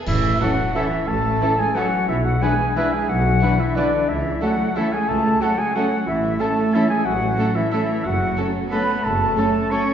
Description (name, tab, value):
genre	classical, orchestral ballroom waltz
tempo	180 BPM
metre	3/4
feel	uneven beats, rubato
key	A major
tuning	A4 = 440 Hz
part	rich chamber violin section	second line	0.0-9.8 s	C#4 to D4	-33 LUFS	left 2 dB	none
part	clear oboe	second line	0.1-9.9 s	D5 to C#6	-28 LUFS	right 2 dB	none
part	mellow hollow silver concert flute	second line	0.1-9.9 s	D5 to C#6	-24 LUFS	left 1 dB	none
part	warm clarinet	second line	0.1-9.9 s	D4 to C#5	-28 LUFS	left 2 dB	none
part	mellow tuba	bass	0.1-9.3 s	F#1 to C#2	-29 LUFS	equal	none
part	rich chamber cello section	bass	0.1-9.9 s	D3 to C#4	-26 LUFS	right 1 dB	none
part	rich chamber double bass section	bass	0.1-9.3 s	F#1 to C#2	-27 LUFS	right 1 dB	none
part	clash cymbals and concert bass drum	percussion	0.1-0.7 s	none	-29 LUFS	equal	none
part	rich chamber violin section	melody	0.4-9.8 s	E4 to A4	-40 LUFS	left 2 dB	none
part	rich studio viola section	accompaniment	0.4-9.8 s	E3 to A3	-27 LUFS	right 2 dB	none
part	warm French horn section	sustained chords	0.4-9.8 s	E3 to D4	-30 LUFS	left 2 dB	none
part	clear trumpet	stabs	0.4-9.8 s	A4 to B4	-30 LUFS	right 2 dB	none
room	wet recital hall reverb, RT60 1.8 s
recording	recorded in a church or concert hall, nothing above 7.5 kHz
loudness	-18 LUFS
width	side -8 dB against mid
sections	0.1-9.9 A section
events	band accent 0.1-0.4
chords	0.1 A; 2.1 E7/B; 4.1 A/C#; 6.1 A; 8.0 F#m